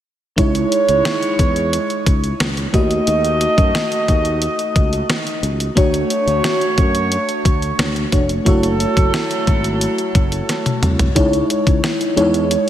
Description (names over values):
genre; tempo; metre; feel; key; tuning
1980s-style pop; 89 BPM; 4/4; straight; C# minor; A4 = 443 Hz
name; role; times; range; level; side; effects
FM electric piano with soft pad layer; accompaniment; 0.4-12.7 s; G#3 to D#5; -19 LUFS; equal; chorus, shimmer reverb, slapback echo
warm horn section; stabs; 0.4-10.8 s; F#3 to D#5; -22 LUFS; right 2 dB; shimmer reverb, slapback echo
sustaining fretless electric bass; bass; 0.4-12.6 s; E#1 to F#2; -21 LUFS; equal; none
clean 12-bit digital drum machine; drums; 0.4-12.7 s; hi-hat, kick drum, snare drum, toms; -18 LUFS; equal; none
room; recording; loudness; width
wet lush hall reverb, RT60 2.3 s; big arena sound; -14 LUFS; side -11 dB against mid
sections
0.4-11.2 A section; 11.2-12.7 B section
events
drum fill 10.5-11.2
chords
0.4 C#madd9; 2.7 D#dim; 5.8 Dmaj7; 8.5 F#m7; 11.2 C#madd9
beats
| 0.38 1.05 1.72 2.40 | 3.07 3.75 4.42 5.09 | 5.77 6.44 7.12 7.79 | 8.46 9.14 9.81 10.49 | 11.16 11.84 12.51